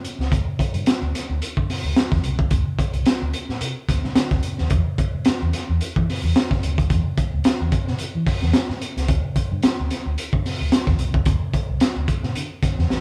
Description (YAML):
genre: funk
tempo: 110 BPM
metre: 4/4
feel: swing 56% on 16ths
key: unclear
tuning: A4 = 440 Hz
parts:
  - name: crunchy breakbeat drum kit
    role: drums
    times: 0.0-13.0 s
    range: hi-hat, kick drum, snare drum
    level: -23 LUFS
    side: equal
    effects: none
  - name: vintage muted fingered electric bass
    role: bass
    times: 0.2-13.0 s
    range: A1 to E3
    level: -26 LUFS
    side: equal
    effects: none
room: light reverb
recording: band playing live in one room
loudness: -22 LUFS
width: mono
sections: 0.0-13.0 A section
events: none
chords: none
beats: | 0.32 0.87 1.42 1.97 | 2.52 3.06 3.61 4.16 | 4.71 5.26 5.80 6.35 | 6.90 7.45 7.99 8.54 | 9.09 9.63 10.18 10.72 | 11.27 11.81 12.36 12.90